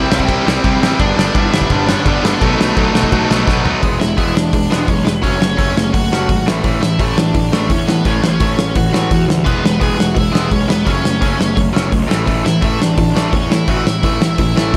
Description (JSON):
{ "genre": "punk rock", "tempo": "170 BPM", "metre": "4/4", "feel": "straight", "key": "A major from 3.8 s", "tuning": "A4 = 441 Hz", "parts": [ { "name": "high-gain lead guitar", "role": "melody", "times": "0.0-14.8 s", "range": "A3 to G#5", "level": "-24 LUFS", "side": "equal", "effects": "distortion, slapback echo, delay" }, { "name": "overdriven electric guitar", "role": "riff", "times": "0.0-14.8 s", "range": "G2 to E4", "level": "-19 LUFS", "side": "equal", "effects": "slapback echo" }, { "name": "sludgy distorted guitar", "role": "riff", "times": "0.0-3.8 s", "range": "G2 to C4", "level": "-25 LUFS", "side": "equal", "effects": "overdrive" }, { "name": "tight distorted guitar", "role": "riff", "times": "0.0-3.8 s", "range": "G2 to C4", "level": "-24 LUFS", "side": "equal", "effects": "distortion, slapback echo" }, { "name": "fuzz picked electric bass", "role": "bass", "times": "0.0-14.8 s", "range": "E1 to A2", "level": "-22 LUFS", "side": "equal", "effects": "overdrive" }, { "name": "loose indie drum kit", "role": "drums", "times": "0.1-14.8 s", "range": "crash cymbal, hi-hat, kick drum, ride cymbal, snare drum, toms", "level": "-19 LUFS", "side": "equal", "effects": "none" } ], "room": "moderate lush hall reverb, RT60 1.9 s", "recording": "big arena sound", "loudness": "-14 LUFS", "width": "mono", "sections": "0.0-3.8 A section; 3.8-14.8 B section", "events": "drum fill 3.5-3.8", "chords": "0.0 C; 1.0 G; 2.4 B7; 3.8 E; 5.2 F#m; 6.5 A; 9.5 E; 10.9 F#m; 12.1 A5", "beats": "0.28 0.63 | 0.99 1.34 1.69 2.05 | 2.40 2.75 3.11 3.46 | 3.81 4.17 4.52 4.88 | 5.23 5.58 5.93 6.29 | 6.64 6.99 7.34 7.70 | 8.05 8.40 8.76 9.11 | 9.46 9.81 10.16 10.52 | 10.87 11.22 11.57 11.92 | 12.27 12.62 12.98 13.33 | 13.68 14.03 14.38 14.74" }